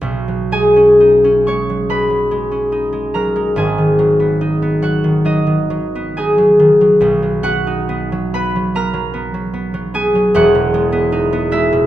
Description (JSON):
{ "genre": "classical, solo harp piece", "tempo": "59-76 BPM", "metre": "4/4", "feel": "rubato", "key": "B major", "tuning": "A4 = 440 Hz", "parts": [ { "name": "concert harp", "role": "solo", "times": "0.0-11.9 s", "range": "E1 to C#6", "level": "-12 LUFS", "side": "equal", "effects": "none" } ], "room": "wet recital hall reverb, RT60 1.6 s", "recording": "minimal, uncompressed stereo recording", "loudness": "-12 LUFS", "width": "side -13 dB against mid", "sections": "0.0-11.9 A section", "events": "none", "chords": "0.0 B69; 3.6 G#m7; 7.0 Bmaj7; 10.3 Emaj7" }